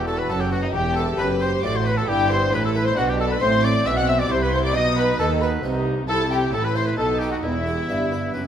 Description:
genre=classical, baroque-style concerto movement with solo episodes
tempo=135 BPM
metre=3/4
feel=straight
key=E minor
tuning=A4 = 440 Hz
part: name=bright oboe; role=melody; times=0.0-8.4 s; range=D#4 to F#5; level=-27 LUFS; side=left 2 dB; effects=none
part: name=clear chamber violin section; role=second line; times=0.0-8.5 s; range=D#4 to F#5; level=-26 LUFS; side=left 1 dB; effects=none
part: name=harpsichord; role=accompaniment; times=0.0-8.5 s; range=E2 to E5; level=-30 LUFS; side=equal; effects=none
part: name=warm chamber viola section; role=accompaniment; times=0.0-8.5 s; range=B3 to G4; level=-29 LUFS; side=equal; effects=none
part: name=rich chamber cello section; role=bass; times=0.0-8.5 s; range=E2 to D#3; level=-26 LUFS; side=right 2 dB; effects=none
part: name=rich chamber double bass section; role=bass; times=0.0-8.5 s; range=E1 to D#2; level=-27 LUFS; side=right 2 dB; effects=none
part: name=rich studio violin section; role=melody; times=0.1-8.5 s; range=D#5 to F#6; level=-28 LUFS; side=left 3 dB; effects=none
room=moderate recital hall reverb, RT60 1.5 s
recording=none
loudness=-19 LUFS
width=side -9 dB against mid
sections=0.0-8.5 A section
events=none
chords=0.0 B7; 0.7 Em; 2.1 Em/G; 3.4 F#dim/A; 4.7 B; 6.1 C; 6.5 A5; 7.0 B7; 7.4 Em

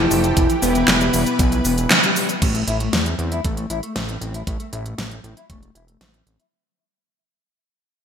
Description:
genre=synthwave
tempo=117 BPM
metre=4/4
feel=straight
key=A minor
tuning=A4 = 441 Hz
part: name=soft octave-layered synth lead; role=melody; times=0.0-2.3 s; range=B3 to E4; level=-22 LUFS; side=left 1 dB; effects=chorus, phaser, digital delay
part: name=FM electric piano with soft pad layer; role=second line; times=0.0-2.3 s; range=B3 to E4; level=-27 LUFS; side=left 2 dB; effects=none
part: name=lush unison pad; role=sustained chords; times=0.0-2.4 s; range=E3 to B4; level=-26 LUFS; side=right 2 dB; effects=chorus, vintage 12-bit sampler grit
part: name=mellow electric guitar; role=riff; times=0.0-6.4 s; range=E3 to E4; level=-28 LUFS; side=left 4 dB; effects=lush chorus, low-pass filter, ping-pong delay
part: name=fat analog bass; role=bass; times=0.0-6.4 s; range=E1 to E2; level=-24 LUFS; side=equal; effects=none
part: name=pop drum kit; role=drums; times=0.1-6.5 s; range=cabasa, crash cymbal, handclaps, hi-hat, snare drum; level=-20 LUFS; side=right 1 dB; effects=studio reverb, gated reverb
part: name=electronic kick drum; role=drums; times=0.4-5.6 s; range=none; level=-21 LUFS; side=equal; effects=studio reverb
room=moderate plate reverb, RT60 2.3 s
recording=bright 1980s-style digital production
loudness=-17 LUFS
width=side -8 dB against mid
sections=0.0-2.4 A section; 2.4-6.5 B section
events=band accent 1.9; fade-out 2.4-6.5; filter sweep on clean electric guitar 2.4-6.5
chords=0.4 Em; 2.4 Am

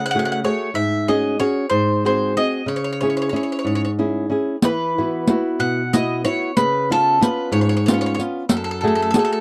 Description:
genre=italian folk, Italian serenade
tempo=62 BPM (dotted quarters)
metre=6/8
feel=straight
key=C# harmonic minor, E major from 4.6 s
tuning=A4 = 440 Hz
part: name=bowl-back mandolin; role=melody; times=0.0-9.4 s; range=A4 to F#5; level=-24 LUFS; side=equal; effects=none
part: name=flamenco guitar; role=accompaniment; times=0.0-9.4 s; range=F#2 to G#4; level=-22 LUFS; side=equal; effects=none
part: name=riq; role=percussion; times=4.6-9.4 s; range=none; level=-21 LUFS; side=equal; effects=none
room=light reverb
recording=dry, close 1970s-style studio recording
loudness=-20 LUFS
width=mono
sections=0.0-4.6 A section; 4.6-9.4 B section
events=none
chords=0.0 F#madd9; 0.8 G#7sus4; 1.7 G#7; 2.7 C#m; 4.6 Esus2; 6.6 C#7; 8.5 F#madd9

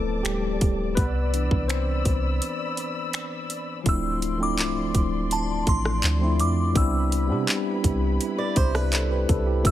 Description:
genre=contemporary R&B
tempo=83 BPM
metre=4/4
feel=straight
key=C major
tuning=A4 = 441 Hz
part: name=tine electric piano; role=accompaniment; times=0.0-9.7 s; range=E3 to E5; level=-27 LUFS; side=left 1 dB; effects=slow stereo tremolo
part: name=muted studio string section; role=sustained chords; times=0.0-9.7 s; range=F3 to E6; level=-34 LUFS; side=left 2 dB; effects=none
part: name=soft 808-style bass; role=bass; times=0.0-9.7 s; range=C1 to C3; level=-25 LUFS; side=equal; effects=none
part: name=trap drum kit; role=drums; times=0.2-9.7 s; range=finger snaps, handclaps, hi-hat, kick drum, rim click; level=-24 LUFS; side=equal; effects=none
part: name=glassy synth bell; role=melody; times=3.9-9.7 s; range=A5 to E6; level=-29 LUFS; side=equal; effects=chorus, digital delay
part: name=fingerpicked swing-style acoustic guitar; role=arpeggios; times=8.4-9.6 s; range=B4 to D5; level=-31 LUFS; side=right 5 dB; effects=digital delay
room=little or no reverb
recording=none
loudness=-22 LUFS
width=side -12 dB against mid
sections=0.0-3.9 A section; 3.9-9.7 B section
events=tine electric piano solo 0.0-3.9; break 2.4-3.9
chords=0.0 Dm7; 1.0 Cmaj7; 3.9 Dm7; 6.8 Cmaj7

